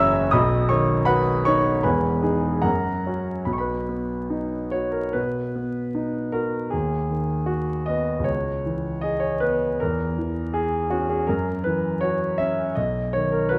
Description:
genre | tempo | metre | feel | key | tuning
classical, romantic character piece for solo piano | 69-83 BPM | 2/4 | rubato | B major | A4 = 438 Hz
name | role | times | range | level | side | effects
clear concert grand piano | solo | 0.0-13.6 s | E1 to E6 | -24 LUFS | equal | none
room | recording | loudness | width
moderate recital hall reverb, RT60 1.6 s | worn, warbling old tape, cassette tape, vinyl crackle, warbly pitch drift | -24 LUFS | mono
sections
0.0-5.2 A section; 5.2-13.6 B section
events
none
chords
0.3 B; 1.8 Emaj7; 2.6 F#; 3.5 B; 6.7 B/D#; 8.3 C#m7; 9.8 C#m/E; 11.3 F#5; 12.8 B

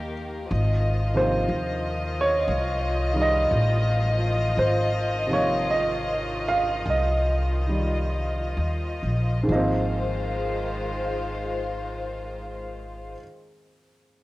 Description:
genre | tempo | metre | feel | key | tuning
jazz ballad | 43-62 BPM | 4/4 | swing 66% on 8ths | Ab major | A4 = 442 Hz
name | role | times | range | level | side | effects
warm baby grand piano | accompaniment | 0.0-14.2 s | Ab2 to F5 | -26 LUFS | right 2 dB | cassette tape
warm chamber string section | sustained chords | 0.0-13.1 s | Eb3 to Eb5 | -28 LUFS | left 2 dB | cassette tape
upright bass | bass | 0.0-13.1 s | Ab1 to Eb2 | -26 LUFS | equal | none
room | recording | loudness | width
light reverb | home recording on cassette | -22 LUFS | side -18 dB against mid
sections
0.0-9.5 A section; 9.5-14.2 B section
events
slowing down 0.5-9.5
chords
0.5 Ab6

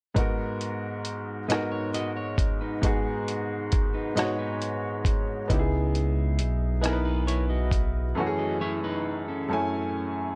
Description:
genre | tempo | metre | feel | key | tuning
slow six-eight R&B | 45 BPM (dotted quarters) | 6/8 | straight | G# phrygian | A4 = 439 Hz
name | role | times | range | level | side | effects
clear baby grand piano | accompaniment | 0.1-10.4 s | F#2 to G#5 | -31 LUFS | equal | none
dusty soul sampler-style drum kit | drums | 0.2-7.9 s | hi-hat, kick drum, rim click | -29 LUFS | equal | none
electric guitar at the edge of break-up | second line | 1.5-10.4 s | B3 to D#5 | -37 LUFS | equal | tremolo
smooth synth bass | bass | 5.5-8.1 s | B1 to C#2 | -28 LUFS | equal | none
room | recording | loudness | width
light reverb | dark, warm production | -28 LUFS | mono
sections
0.2-10.4 A section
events
break 8.2-10.4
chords
0.2 G#m9; 5.5 C#m9; 8.2 F#m9

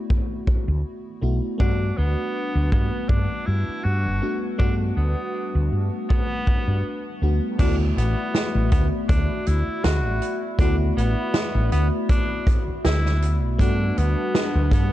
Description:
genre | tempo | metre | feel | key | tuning
vaporwave | 80 BPM | 4/4 | swing 54% on 16ths | D major | A4 = 439 Hz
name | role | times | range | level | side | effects
FM electric piano with soft pad layer | accompaniment | 0.0-14.9 s | A3 to F#4 | -28 LUFS | left 1 dB | wide subtle chorus, analog delay
warbly tape-like pad | sustained chords | 0.0-14.9 s | G3 to B5 | -35 LUFS | left 2 dB | chorus, built-in reverb, vintage 12-bit sampler grit
kick drum | drums | 0.1-14.9 s | none | -21 LUFS | equal | vintage 12-bit sampler grit
woody fretless electric bass | bass | 0.7-14.9 s | G1 to G2 | -21 LUFS | equal | none
bright tenor saxophone | melody | 1.6-14.9 s | B3 to F#4 | -30 LUFS | equal | tape echo
swinging big-band drum kit | drums | 7.6-14.9 s | crash cymbal, hi-hat, snare drum | -27 LUFS | right 2 dB | vintage 12-bit sampler grit
room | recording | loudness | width
small room ambience | dark, warm production, cassette tape, nothing above 10.3 kHz | -20 LUFS | side -14 dB against mid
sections
0.0-7.6 A section; 7.6-14.9 B section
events
none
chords
0.0 D69; 1.6 Gmaj9; 7.6 D69; 13.6 Gmaj9

